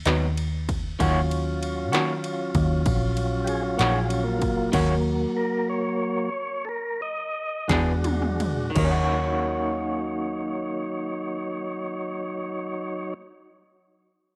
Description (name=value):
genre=slow blues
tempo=55-64 BPM (dotted quarters)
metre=12/8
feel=straight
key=Eb minor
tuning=A4 = 440 Hz
part: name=vintage muted fingered electric bass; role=bass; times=0.0-13.1 s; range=Bb1 to Eb3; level=-28 LUFS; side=equal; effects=none
part: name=electric guitar through a small old amp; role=accompaniment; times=0.1-13.3 s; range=Ab2 to G#4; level=-30 LUFS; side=equal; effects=tremolo
part: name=industrial drum kit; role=drums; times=0.1-8.9 s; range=crash cymbal, kick drum, ride cymbal, snare drum, toms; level=-32 LUFS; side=equal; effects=none
part: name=tonewheel organ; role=sustained chords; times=1.0-13.1 s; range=Gb3 to Eb5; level=-30 LUFS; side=equal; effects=slow rotary speaker
room=light reverb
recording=none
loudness=-26 LUFS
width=mono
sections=0.0-8.8 A section; 8.8-13.1 B section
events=tonewheel organ solo 0.0-8.8; slowing down 3.5-8.8; drum fill 7.7-8.8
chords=0.0 Abm7; 1.0 Ebm7; 7.7 E7; 8.8 Ebm7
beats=0.07 | 1.00 1.93 2.86 3.79 | 4.74 5.70 6.68 7.70 | 8.77 9.86 10.95 12.04